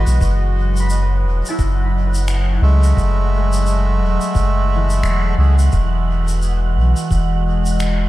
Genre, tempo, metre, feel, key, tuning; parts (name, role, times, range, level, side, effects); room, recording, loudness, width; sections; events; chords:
ambient dub; 87 BPM; 4/4; swing 60% on 16ths; F# dorian; A4 = 438 Hz
warbly tape-like pad; sustained chords; 0.0-8.1 s; E3 to E5; -25 LUFS; equal; chorus, built-in reverb
concert harp; arpeggios; 0.0-5.8 s; E3 to B5; -30 LUFS; left 2 dB; dub echo
melodica; stabs; 0.0-5.5 s; G#3 to E5; -25 LUFS; right 2 dB; dub echo
round analog bass; bass; 0.0-8.1 s; E1 to C#2; -15 LUFS; equal
wind-like tuned noise texture; texture; 0.0-8.1 s; F#5; -31 LUFS; right 8 dB; built-in reverb
shaker and finger snaps; drums; 0.1-8.0 s; -31 LUFS; left 1 dB; dub echo
electronic kick drum; drums; 0.2-7.3 s; -19 LUFS; equal
small room ambience; -14 LUFS; side -16 dB against mid
0.0-8.1 A section
0.2 F#m9; 5.7 Emaj9